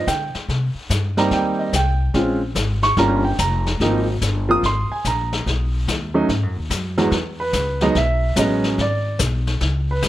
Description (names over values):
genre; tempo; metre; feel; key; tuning
jazz piano trio; 145 BPM; 4/4; swing 66% on 8ths; unclear; A4 = 438 Hz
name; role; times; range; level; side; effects
warm baby grand piano; melody; 0.0-10.1 s; Fb2 to Eb6; -19 LUFS; right 2 dB; plate reverb
upright bass; bass; 0.0-10.1 s; F1 to D3; -22 LUFS; left 1 dB; none
vintage brush drum kit; drums; 0.1-10.1 s; brushed snare drum, hi-hat, kick drum, snare drum; -26 LUFS; left 3 dB; none
room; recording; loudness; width
light reverb; close, detailed microphones; -17 LUFS; side -14 dB against mid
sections
0.0-7.1 A section; 7.1-10.1 B section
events
grand piano solo 7.1-10.1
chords
0.5 Cm7; 2.1 Bbm9; 3.0 Bbm6; 3.8 Ab69; 5.5 B; 7.1 Emaj9; 8.8 C#5